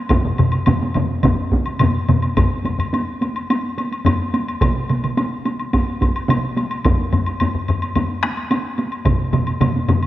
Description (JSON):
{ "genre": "japanese traditional, taiko drum ensemble", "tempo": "107 BPM", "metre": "4/4", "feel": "straight", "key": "none", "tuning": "none", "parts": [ { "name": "solo taiko drums", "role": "percussion", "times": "0.1-9.2 s", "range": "none", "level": "-21 LUFS", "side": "right 1 dB", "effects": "none" }, { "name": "taiko ensemble", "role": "percussion", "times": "0.1-10.1 s", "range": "none", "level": "-22 LUFS", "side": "right 1 dB", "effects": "none" }, { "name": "taiko ensemble", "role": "percussion", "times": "0.1-10.0 s", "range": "none", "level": "-21 LUFS", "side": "left 3 dB", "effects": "none" }, { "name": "taiko ensemble", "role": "percussion", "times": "0.1-10.0 s", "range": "none", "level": "-21 LUFS", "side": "right 2 dB", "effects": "none" }, { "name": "woodblock", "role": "percussion", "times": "0.1-10.1 s", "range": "none", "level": "-26 LUFS", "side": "left 2 dB", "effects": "none" } ], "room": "moderate concert hall reverb, RT60 2.4 s", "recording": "worn, warbling old tape, cassette tape, warbly pitch drift", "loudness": "-17 LUFS", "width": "side -14 dB against mid", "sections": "0.0-10.1 A section", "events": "speeding up 0.0-10.1", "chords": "none", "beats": "| 0.10 0.67 1.24 1.80 | 2.37 2.93 3.49 4.06 | 4.62 5.17 5.73 6.29 | 6.84 7.40 7.95 8.51 | 9.06 9.61" }